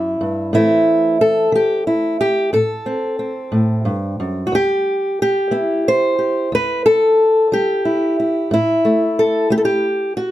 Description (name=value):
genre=folk, solo fingerstyle acoustic guitar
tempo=60 BPM (dotted quarters)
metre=6/8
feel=straight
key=E minor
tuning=A4 = 440 Hz
part: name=fingerpicked old ladder-braced acoustic guitar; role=solo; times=0.0-10.3 s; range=E2 to C5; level=-14 LUFS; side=equal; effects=none
room=little or no reverb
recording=close, detailed microphones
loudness=-14 LUFS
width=side -14 dB against mid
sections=0.0-10.3 A section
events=none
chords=0.0 Emadd9; 0.5 Am; 4.5 Em; 8.5 N.C.